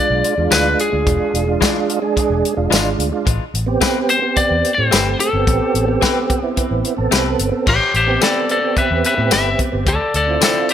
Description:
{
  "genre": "straight-eighth soul blues",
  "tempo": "109 BPM",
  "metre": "4/4",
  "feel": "straight",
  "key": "A minor",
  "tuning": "A4 = 442 Hz",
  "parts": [
    { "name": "lightly driven lead guitar", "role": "melody", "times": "0.0-10.7 s", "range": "G4 to E5", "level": "-18 LUFS", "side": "left 2 dB", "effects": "none" },
    { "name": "tonewheel organ", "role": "accompaniment", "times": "0.0-10.7 s", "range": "G#3 to A4", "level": "-20 LUFS", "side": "right 5 dB", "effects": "slow rotary speaker, overdrive, chorus vibrato" },
    { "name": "vintage muted fingered electric bass", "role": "bass", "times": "0.1-10.4 s", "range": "E1 to A2", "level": "-21 LUFS", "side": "equal", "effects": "none" },
    { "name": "warm soul drum kit", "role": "drums", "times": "0.2-10.7 s", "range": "crash cymbal, hi-hat, kick drum, snare drum, tambourine", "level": "-19 LUFS", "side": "left 1 dB", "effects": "none" },
    { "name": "direct-recorded clean electric guitar", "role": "stabs", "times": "0.5-10.6 s", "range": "D3 to B4", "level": "-24 LUFS", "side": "left 7 dB", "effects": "tape echo" }
  ],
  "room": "light reverb",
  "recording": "none",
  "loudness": "-14 LUFS",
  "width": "side -9 dB against mid",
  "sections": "0.0-7.7 A section; 7.7-10.7 B section",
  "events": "lead electric guitar solo 7.7-10.7",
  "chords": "0.0 E7b9; 3.3 Am9; 9.9 Dm9",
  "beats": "0.51 | 1.06 1.61 2.17 2.72 | 3.27 3.82 4.37 4.92 | 5.47 6.02 6.57 7.12 | 7.67 8.22 8.77 9.32 | 9.87 10.42"
}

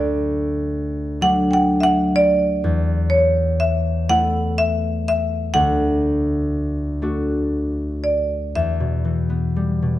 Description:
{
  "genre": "celtic folk, Celtic slow air",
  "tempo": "39-42 BPM (dotted quarters)",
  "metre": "6/8",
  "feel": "rubato",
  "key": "unclear",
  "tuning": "A4 = 441 Hz",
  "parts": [
    { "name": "marimba with medium hard mallets", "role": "melody", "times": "0.0-10.0 s", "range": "C#5 to G5", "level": "-19 LUFS", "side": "right 1 dB", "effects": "none" },
    { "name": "concert harp", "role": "accompaniment", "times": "0.0-10.0 s", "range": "D2 to F#4", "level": "-20 LUFS", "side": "left 1 dB", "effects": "none" }
  ],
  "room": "moderate recital hall reverb, RT60 1.4 s",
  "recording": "dark, warm production",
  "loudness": "-17 LUFS",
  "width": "side -14 dB against mid",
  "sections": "0.0-8.5 A section; 8.5-10.0 B section",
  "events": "none",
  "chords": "0.0 D; 2.6 Asus2/E; 5.5 D; 8.5 Em",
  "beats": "1.22 | 2.65 4.09 | 5.54 7.02 | 8.55"
}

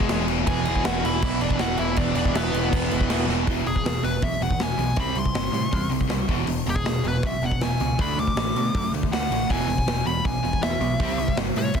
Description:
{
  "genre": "punk rock",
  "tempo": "160 BPM",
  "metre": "4/4",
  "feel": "straight",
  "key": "unclear",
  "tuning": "A4 = 440 Hz",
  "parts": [
    { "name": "nasal lead guitar with a parked wah", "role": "melody", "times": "0.0-11.8 s", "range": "G#3 to D6", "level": "-28 LUFS", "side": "left 1 dB", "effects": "overdrive, digital delay" },
    { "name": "sludgy distorted guitar", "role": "riff", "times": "0.0-3.3 s", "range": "E2 to E3", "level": "-30 LUFS", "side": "right 1 dB", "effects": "overdrive" },
    { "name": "tight distorted guitar", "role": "riff", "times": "0.0-11.8 s", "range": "E2 to D4", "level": "-30 LUFS", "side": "left 12 dB", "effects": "distortion" },
    { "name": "growling picked electric bass", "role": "bass", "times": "0.0-11.8 s", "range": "E1 to B2", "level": "-29 LUFS", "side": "equal", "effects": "overdrive" },
    { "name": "big rock drum kit", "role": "drums", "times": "0.0-11.8 s", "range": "crash cymbal, hi-hat, kick drum, snare drum", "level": "-26 LUFS", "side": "equal", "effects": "soft clipping on snare" },
    { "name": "crunchy overdriven guitar", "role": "riff", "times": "0.5-11.8 s", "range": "E2 to D4", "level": "-28 LUFS", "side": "right 12 dB", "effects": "none" }
  ],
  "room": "light reverb",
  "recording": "dense, heavily limited modern master",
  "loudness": "-21 LUFS",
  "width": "side -7 dB against mid",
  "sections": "0.0-3.5 A section; 3.5-11.8 B section",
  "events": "drum fill 3.3; lead electric guitar solo 3.5-11.8",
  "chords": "0.0 E; 5.0 C5; 6.3 E; 8.0 D; 9.5 E; 11.0 C",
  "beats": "0.11 | 0.48 0.85 1.23 1.60 | 1.98 2.35 2.73 3.10 | 3.48 3.85 4.23 4.61 | 4.98 5.36 5.74 6.11 | 6.49 6.86 7.24 7.62 | 7.99 8.37 8.74 9.12 | 9.49 9.87 10.24 10.62 | 11.00 11.37 11.75"
}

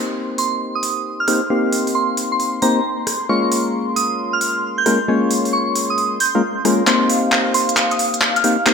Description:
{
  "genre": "UK garage, two-step garage",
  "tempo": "134 BPM",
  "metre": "4/4",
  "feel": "swing 65% on 16ths",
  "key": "C phrygian",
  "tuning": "A4 = 440 Hz",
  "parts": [
    { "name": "warm analog pad", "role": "sustained chords", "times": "0.0-8.7 s", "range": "F5 to C6", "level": "-26 LUFS", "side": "equal", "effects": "chorus" },
    { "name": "percussive organ stab", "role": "stabs", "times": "0.0-8.7 s", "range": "Ab3 to F5", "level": "-19 LUFS", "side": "left 2 dB", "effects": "chorus" },
    { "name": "soft synth bell", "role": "melody", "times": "0.4-8.6 s", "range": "Bb5 to G6", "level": "-21 LUFS", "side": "right 1 dB", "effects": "chorus, phaser, low-pass filter, digital delay" },
    { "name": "garage drum kit", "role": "drums", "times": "0.4-8.7 s", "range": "handclaps, hi-hat, rim click", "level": "-20 LUFS", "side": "right 1 dB", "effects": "gated reverb" }
  ],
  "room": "moderate lush hall reverb, RT60 1.7 s, digital ambience",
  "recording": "bright 1980s-style digital production",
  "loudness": "-15 LUFS",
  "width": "side -6 dB against mid",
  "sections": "0.0-6.9 A section; 6.9-8.7 B section",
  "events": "filter sweep on synth stab 0.0-6.9; build-up 6.9-8.7; drum fill 6.9-8.7; filter sweep on synth bell 6.9-8.7",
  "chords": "0.0 Cm7; 3.1 Bbm7; 6.9 Cm7",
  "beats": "0.16 0.61 1.05 | 1.50 1.95 2.40 2.85 | 3.29 3.74 4.19 4.64 | 5.08 5.53 5.98 6.43 | 6.88 7.32 7.77 8.22 | 8.67"
}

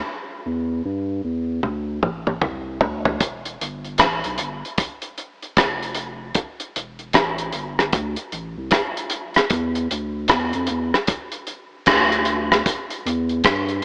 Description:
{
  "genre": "dub reggae",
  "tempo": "76 BPM",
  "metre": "4/4",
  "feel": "swing 62% on 16ths",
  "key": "E phrygian",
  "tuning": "A4 = 441 Hz",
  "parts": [
    { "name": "warm sub bass", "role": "bass", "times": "0.5-13.8 s", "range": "E1 to G2", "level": "-26 LUFS", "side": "equal", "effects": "none" },
    { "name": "damped 70s drum kit", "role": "drums", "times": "1.6-13.8 s", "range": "hi-hat, kick drum, rim click, toms", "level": "-19 LUFS", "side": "equal", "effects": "none" }
  ],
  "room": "wet plate reverb, RT60 2.6 s",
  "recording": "AM radio sound",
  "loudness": "-19 LUFS",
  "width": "side -33 dB against mid",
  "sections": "0.0-3.2 A section; 3.2-13.8 B section",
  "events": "break 0.1-3.2; drum fill 1.6-3.2",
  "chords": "none",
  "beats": "| 0.05 0.84 1.63 2.42 | 3.21 4.00 4.78 5.57 | 6.36 7.15 7.94 8.72 | 9.51 10.30 11.09 11.87 | 12.66 13.45"
}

